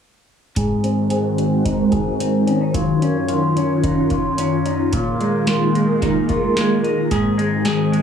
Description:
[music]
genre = dream pop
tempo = 110 BPM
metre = 4/4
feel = straight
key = unclear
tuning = A4 = 440 Hz
[part]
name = phased string machine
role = sustained chords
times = 0.9-8.0 s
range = Gb2 to Gb4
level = -19 LUFS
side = equal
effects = ensemble chorus, phaser, low-pass filter
[part]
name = semi-hollow electric guitar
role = arpeggios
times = 0.6-8.0 s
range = Ab2 to Ab4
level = -20 LUFS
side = left 1 dB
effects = lush chorus, low-pass filter, tape echo
[part]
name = booming analog drum machine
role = drums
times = 0.6-8.0 s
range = hi-hat, kick drum, snare drum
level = -25 LUFS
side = equal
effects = tape echo
[sound]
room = wet spring reverb, RT60 1.3 s, digital ambience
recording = echo-heavy mix, studio ambience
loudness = -16 LUFS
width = side -7 dB against mid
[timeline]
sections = 0.6-8.0 A section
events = filter sweep 0.6-8.0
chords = 0.6 Ab7; 2.7 Ebm9/Gb; 4.9 Bb7sus4; 7.1 Ab7

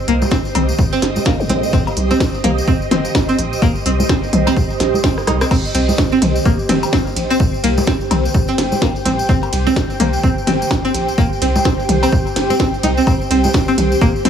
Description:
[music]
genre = minimal techno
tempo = 127 BPM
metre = 4/4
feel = swing 59% on 16ths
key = C minor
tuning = A4 = 440 Hz
[part]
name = ethereal airy pad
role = texture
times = 0.0-14.3 s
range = G4 to C6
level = -21 LUFS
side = right 1 dB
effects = ensemble chorus, built-in reverb, phaser, sidechain pumping
[part]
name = string-like resonator pluck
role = riff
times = 0.1-14.3 s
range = Bb3 to Eb4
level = -20 LUFS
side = equal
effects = chorus, phaser, sidechain pumping, dub echo
[part]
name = rubbery square bass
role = bass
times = 0.1-14.3 s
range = G1 to C2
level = -20 LUFS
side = equal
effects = sidechain pumping
[part]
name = techno drum kit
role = drums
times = 0.1-14.3 s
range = crash cymbal, hi-hat, ride cymbal, rim click, snare drum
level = -21 LUFS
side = right 1 dB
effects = none
[part]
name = electronic congas, toms and cowbell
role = percussion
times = 0.2-14.3 s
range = none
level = -22 LUFS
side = left 2 dB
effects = digital delay
[part]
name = tambourine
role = percussion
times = 0.2-14.2 s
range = none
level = -31 LUFS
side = left 3 dB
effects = none
[part]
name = electronic kick drum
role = drums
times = 0.3-14.1 s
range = none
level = -18 LUFS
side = equal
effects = none
[part]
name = zap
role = sound effects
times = 1.4-1.5 s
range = none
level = -24 LUFS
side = equal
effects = none
[sound]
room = light reverb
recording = small room ambience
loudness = -13 LUFS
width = side -8 dB against mid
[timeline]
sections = 0.0-14.3 A section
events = drum fill 5.2-5.5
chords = 0.0 C5

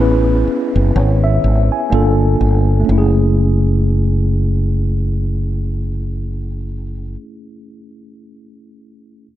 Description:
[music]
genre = contemporary R&B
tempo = 62 BPM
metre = 4/4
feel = swing 58% on 16ths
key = unclear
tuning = A4 = 440 Hz
[part]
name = mellow tine electric piano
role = accompaniment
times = 0.0-9.3 s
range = A3 to G#5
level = -19 LUFS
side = equal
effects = medium stereo tremolo
[part]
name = mellow fretless electric bass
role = bass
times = 0.0-7.2 s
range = F#1 to A1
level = -15 LUFS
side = equal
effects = none
[part]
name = downlifter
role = sound effects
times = 0.0-2.9 s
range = none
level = -35 LUFS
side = right 1 dB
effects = none
[sound]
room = light reverb, digital ambience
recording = nothing above 10.6 kHz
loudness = -13 LUFS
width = side -13 dB against mid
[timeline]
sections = 0.0-2.9 A section; 2.9-6.8 B section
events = none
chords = 0.0 Amaj7; 1.9 Gm7; 2.9 F#m7

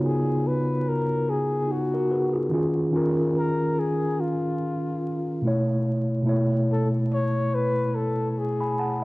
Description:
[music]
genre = lo-fi hip hop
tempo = 72 BPM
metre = 4/4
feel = swing 58% on 16ths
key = unclear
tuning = A4 = 441 Hz
[part]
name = breathy flugelhorn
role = melody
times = 0.0-9.0 s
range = F4 to Db5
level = -28 LUFS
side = left 2 dB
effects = cassette tape
[part]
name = mellow tine electric piano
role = accompaniment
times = 0.0-9.0 s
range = Cb3 to Cb6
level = -23 LUFS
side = equal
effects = medium stereo tremolo, cassette tape
[sound]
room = moderate spring reverb, RT60 2.3 s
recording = home recording on cassette, vinyl crackle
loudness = -22 LUFS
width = side -21 dB against mid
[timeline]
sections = 0.0-9.0 A section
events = none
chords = 0.0 Db9sus4; 2.5 Eb9sus4; 5.4 Cb9sus4

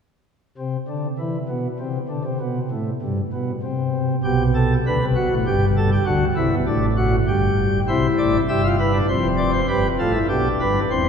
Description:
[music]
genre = classical, baroque-style 3-part fugue for pipe organ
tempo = 99 BPM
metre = 3/4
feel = straight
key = unclear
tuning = A4 = 440 Hz
[part]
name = pipe organ, sparkling flutes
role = solo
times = 0.6-11.1 s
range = E1 to E5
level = -18 LUFS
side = equal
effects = none
[sound]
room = wet cathedral reverb, RT60 4.4 s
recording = recorded in a church or concert hall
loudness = -18 LUFS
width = side -6 dB against mid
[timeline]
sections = 0.6-11.1 A section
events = none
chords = 0.6 N.C.; 4.2 G/B; 5.5 Gsus2; 6.1 D7; 7.3 N.C.; 7.9 C; 9.1 Dm7/F; 9.7 G7

